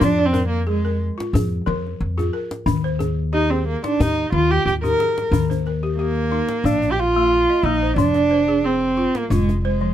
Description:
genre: west african traditional, West African string and xylophone music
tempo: 90 BPM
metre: 4/4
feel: straight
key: F dorian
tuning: A4 = 440 Hz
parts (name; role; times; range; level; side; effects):
- dark cello; melody; 0.0-9.9 s; Ab3 to Bb4; -19 LUFS; right 2 dB; none
- balafon; arpeggios; 0.0-9.9 s; Eb3 to F5; -25 LUFS; left 4 dB; none
- upright bass; bass; 0.0-9.9 s; F1 to F2; -23 LUFS; equal; none
- djembe; percussion; 0.0-9.9 s; none; -24 LUFS; left 2 dB; none
room: little or no reverb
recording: close, detailed microphones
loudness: -17 LUFS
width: side -11 dB against mid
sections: 0.0-5.3 A section; 5.3-9.9 B section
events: cello solo 0.0-5.3; drum fill 4.7-5.3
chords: 0.0 Fm; 2.7 Eb; 6.6 Bb5; 8.0 Fm

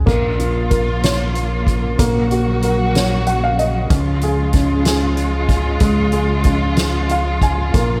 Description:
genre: six-eight pop ballad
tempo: 62 BPM (dotted quarters)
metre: 6/8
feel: straight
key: Db major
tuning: A4 = 444 Hz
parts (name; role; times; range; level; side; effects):
- dark upright piano; accompaniment; 0.0-8.0 s; Ab3 to Ab5; -23 LUFS; equal; none
- fingered electric bass; bass; 0.0-8.0 s; Bb1 to Db2; -22 LUFS; equal; none
- dark studio string section; sustained chords; 0.1-8.0 s; Db3 to Gb4; -24 LUFS; equal; none
- soft-mallet drum kit; drums; 0.1-7.9 s; crash cymbal, hi-hat, kick drum, snare drum; -22 LUFS; equal; none
room: studio reverb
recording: none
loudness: -17 LUFS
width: mono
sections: 0.0-8.0 A section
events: upright piano fill 3.0-3.9, 6.8-7.8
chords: 0.1 Bbm; 2.0 Gb/Bb; 3.9 Db

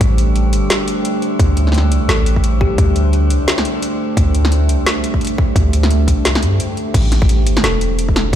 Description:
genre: half-time drum and bass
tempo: 173 BPM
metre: 4/4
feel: swing 59% on 16ths, half-time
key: unclear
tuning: A4 = 440 Hz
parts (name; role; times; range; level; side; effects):
- deep dark ambient pad; sustained chords; 0.0-8.4 s; A3 to C5; -21 LUFS; right 1 dB; chorus, built-in reverb, sidechain pumping
- long sustained 808-style bass; bass; 0.0-8.4 s; E1 to G2; -14 LUFS; equal; tube saturation
- drum and bass drum kit; drums; 0.0-8.4 s; crash cymbal, hi-hat, snare drum; -20 LUFS; equal; none
- electronic kick drum; drums; 0.0-8.4 s; none; -15 LUFS; equal; none
- metallic inharmonic drone; texture; 0.0-7.0 s; G3 to G4; -25 LUFS; equal; chorus, built-in reverb
- thumb-piano-like synth pluck; melody; 2.1-2.9, 7.6-7.9 s; G4 to A4; -25 LUFS; left 4 dB; chorus, vintage 12-bit sampler grit, ping-pong delay
room: digital ambience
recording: played on a big sound system in a bare room, large studio reverb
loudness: -12 LUFS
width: side -10 dB against mid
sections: 0.0-6.9 A section; 6.9-8.4 A section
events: drop 0.0-6.9, 6.9-8.4; break 6.6-6.9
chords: 0.0 Am7; 1.4 Dsus4; 6.9 Am7

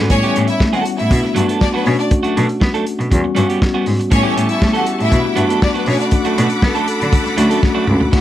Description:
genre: disco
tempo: 120 BPM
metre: 4/4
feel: straight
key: unclear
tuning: A4 = 440 Hz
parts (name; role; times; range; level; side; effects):
- electric guitar at the edge of break-up; accompaniment; 0.0-8.2 s; E3 to A4; -23 LUFS; right 7 dB; none
- mellow tine electric piano; accompaniment; 0.0-8.2 s; G3 to A4; -18 LUFS; left 2 dB; slow stereo tremolo
- rich cello; bass; 0.0-8.2 s; C#2 to B3; -18 LUFS; equal; none
- bright studio violin section; second line; 0.1-8.2 s; B3 to F#5; -20 LUFS; left 1 dB; none
- warm soul drum kit; drums; 0.1-8.2 s; crash cymbal, hi-hat, kick drum, snare drum, toms; -17 LUFS; equal; none
- clear studio string section; sustained chords; 4.1-8.2 s; G3 to D6; -22 LUFS; left 1 dB; none
room: small room ambience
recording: none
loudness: -13 LUFS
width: side -12 dB against mid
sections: 0.1-8.1 A section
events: drum fill 7.6-8.1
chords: 0.1 A7; 1.1 Gmaj7 (rootless); 1.9 Bm7; 3.1 Em69 (rootless); 4.1 A7; 5.1 Gmaj7; 5.9 Bm7

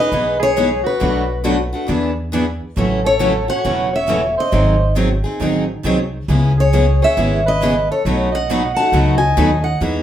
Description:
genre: acoustic string swing (jazz manouche)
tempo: 136 BPM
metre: 4/4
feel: swing 64% on 8ths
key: unclear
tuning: A4 = 439 Hz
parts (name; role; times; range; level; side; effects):
- picked steel-string acoustic guitar; melody; 0.0-9.8 s; B4 to A5; -18 LUFS; left 1 dB; none
- warm soprano saxophone; second line; 0.0-9.8 s; F#4 to F#5; -23 LUFS; right 3 dB; none
- picked steel-string acoustic guitar; accompaniment; 0.0-10.0 s; B2 to G#4; -20 LUFS; left 1 dB; none
- picked steel-string acoustic guitar; accompaniment; 0.1-10.0 s; B2 to B4; -24 LUFS; right 4 dB; none
- upright bass; bass; 0.1-10.0 s; E1 to E2; -19 LUFS; equal; none
room: wet studio reverb, RT60 0.7 s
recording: heard from further back in the room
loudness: -14 LUFS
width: side -10 dB against mid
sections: 0.0-10.0 A section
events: none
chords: 0.0 Emaj7; 1.0 Bm7; 1.9 E7; 2.8 A6; 4.5 G#7; 6.3 C#m9; 8.1 B7

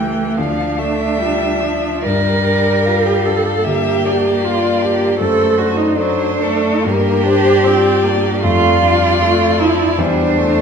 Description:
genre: classical, slow romantic movement for piano quartet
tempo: 66-79 BPM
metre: 4/4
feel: rubato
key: D minor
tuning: A4 = 441 Hz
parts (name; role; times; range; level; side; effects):
- warm violin; melody; 0.0-10.6 s; A4 to G5; -21 LUFS; left 6 dB; none
- dark cello; second line; 0.0-10.6 s; A3 to Bb4; -16 LUFS; right 3 dB; none
- dark grand piano; accompaniment; 0.0-10.6 s; C#2 to A4; -20 LUFS; left 3 dB; none
- warm viola; accompaniment; 0.0-10.6 s; E3 to D4; -21 LUFS; right 1 dB; none
room: wet recital hall reverb, RT60 1.6 s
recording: recorded in a church or concert hall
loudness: -13 LUFS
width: side -6 dB against mid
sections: 0.0-10.6 A section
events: none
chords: 0.4 Dm; 2.0 Gm7; 5.2 D7/F#; 6.8 Gm7; 8.4 Dm/F; 10.0 C/E

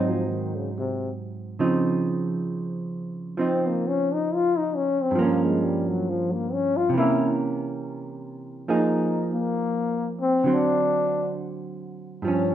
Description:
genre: jazz ballad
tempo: 68 BPM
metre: 4/4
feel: swing 66% on 8ths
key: unclear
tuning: A4 = 440 Hz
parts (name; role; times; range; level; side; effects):
- warm trombone; melody; 0.0-12.5 s; C3 to F4; -24 LUFS; left 4 dB; none
- hollow-body jazz guitar; accompaniment; 0.0-12.5 s; G2 to Ab4; -25 LUFS; right 3 dB; none
room: wet large studio reverb, RT60 0.9 s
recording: band playing live in one room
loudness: -22 LUFS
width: side -10 dB against mid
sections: 0.0-12.5 A section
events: trombone solo 0.0-12.5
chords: 0.0 Ab7; 1.6 Dbmaj9; 5.2 Gm7b5; 6.9 C7b9; 8.7 Fm7; 10.5 D7

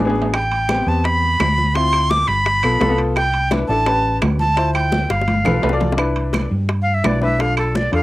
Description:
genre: Afro-Cuban jazz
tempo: 170 BPM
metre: 4/4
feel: straight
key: C major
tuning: A4 = 440 Hz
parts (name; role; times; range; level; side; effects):
- warm baby grand piano; accompaniment; 0.0-8.0 s; B3 to D5; -22 LUFS; left 3 dB; cassette tape
- hollow-body short-scale fingered electric bass; bass; 0.0-8.0 s; G1 to G2; -20 LUFS; equal; none
- timbales; percussion; 0.1-8.0 s; none; -28 LUFS; right 6 dB; none
- congas; percussion; 0.2-7.9 s; none; -25 LUFS; left 1 dB; none
- breathy bright jazz flute; melody; 0.3-8.0 s; A4 to D6; -18 LUFS; right 1 dB; cassette tape
- bongos; percussion; 0.3-8.0 s; none; -25 LUFS; left 4 dB; none
- claves; percussion; 0.3-7.8 s; none; -28 LUFS; right 5 dB; none
room: light reverb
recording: home recording on cassette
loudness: -15 LUFS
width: side -17 dB against mid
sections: 0.0-6.0 A section; 6.0-8.0 B section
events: drum fill 0.0-0.3, 5.1-6.0; flute solo 6.0-8.0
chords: 0.3 Am7; 1.8 Dm7; 2.5 G7; 3.2 Cmaj7; 3.9 A7; 4.6 Dm7; 5.3 G7; 6.0 Cmaj7; 7.4 Bm7b5

